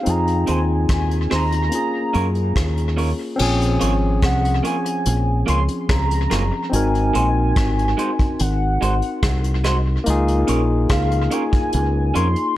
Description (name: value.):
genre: lovers rock reggae.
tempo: 72 BPM.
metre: 4/4.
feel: straight.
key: Bb minor.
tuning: A4 = 440 Hz.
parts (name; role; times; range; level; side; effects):
warm velvety synth lead; melody; 0.0-12.6 s; F5 to C6; -25 LUFS; equal; chorus, tape echo.
barky tine electric piano; accompaniment; 0.0-12.6 s; F3 to Bb4; -23 LUFS; left 2 dB; overdrive, tape echo.
deep dub fingered electric bass; bass; 0.1-12.3 s; Gb1 to Gb2; -20 LUFS; equal; none.
vintage brush drum kit; drums; 0.1-12.6 s; crash cymbal, hi-hat, kick drum, rim click; -23 LUFS; equal; gated reverb, tape echo.
electric guitar through a small old amp; stabs; 0.5-12.3 s; Ab3 to Db5; -27 LUFS; right 4 dB; none.
room: light reverb, small room ambience.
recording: none.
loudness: -17 LUFS.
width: side -14 dB against mid.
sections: 0.0-3.4 A section; 3.4-12.6 B section.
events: none.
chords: 0.1 Fm7; 1.7 Gbmaj7; 3.4 Bbm7; 6.7 Ab7; 10.1 Db6.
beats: | 0.06 0.89 1.73 2.56 | 3.39 4.23 5.06 5.89 | 6.73 7.56 8.40 9.23 | 10.06 10.90 11.73 12.57.